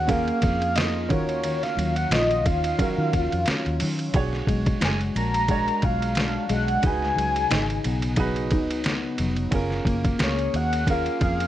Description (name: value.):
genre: indie pop, bedroom pop.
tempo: 89 BPM.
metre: 4/4.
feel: swing 55% on 16ths.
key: F# major.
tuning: A4 = 440 Hz.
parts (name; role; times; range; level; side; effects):
soft octave-layered synth lead; melody; 0.0-11.5 s; C#5 to A#5; -26 LUFS; equal; lush chorus, tape echo.
fingerpicked steel-string acoustic guitar; accompaniment; 0.0-11.5 s; C#3 to G#4; -29 LUFS; left 2 dB; analog chorus, vibrato effect.
warm upright piano; accompaniment; 0.0-11.5 s; C#4 to C#5; -31 LUFS; right 4 dB; none.
vintage muted fingered electric bass; bass; 0.0-11.5 s; E#1 to D#3; -28 LUFS; equal; none.
lo-fi sampler-style drum kit; drums; 0.1-11.5 s; hi-hat, kick drum, ride cymbal, snare drum; -26 LUFS; equal; overdrive, vintage 12-bit sampler grit.
room: moderate studio reverb, RT60 0.6 s.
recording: none.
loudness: -21 LUFS.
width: side -12 dB against mid.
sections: 0.0-11.5 A section.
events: none.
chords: 0.0 F#maj9; 1.1 D#m9; 4.1 Bm6; 6.8 C#9sus4; 9.5 F#maj9.